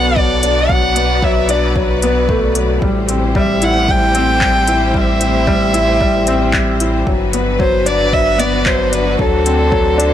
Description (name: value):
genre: piano and strings electronica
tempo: 113 BPM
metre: 4/4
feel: straight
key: A dorian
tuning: A4 = 440 Hz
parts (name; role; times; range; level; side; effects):
- dark violin; melody; 0.0-10.1 s; A4 to G5; -17 LUFS; right 1 dB; ping-pong delay
- rich studio string section; sustained chords; 0.0-10.1 s; D3 to D5; -22 LUFS; left 1 dB; sidechain pumping
- warm upright piano; riff; 0.0-10.1 s; F#3 to E4; -17 LUFS; left 2 dB; ping-pong delay
- round analog bass; bass; 0.0-10.1 s; G1 to D2; -19 LUFS; equal; sidechain pumping
- electronic kick drum; drums; 0.2-9.8 s; none; -19 LUFS; equal; none
- organic electronic drum kit; drums; 0.4-10.1 s; handclaps, hi-hat; -21 LUFS; left 1 dB; none
room: light reverb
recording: none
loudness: -12 LUFS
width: side -11 dB against mid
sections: 0.0-10.1 A section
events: none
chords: 0.0 Bm7; 2.8 Am7; 7.1 Gmaj7; 9.2 D7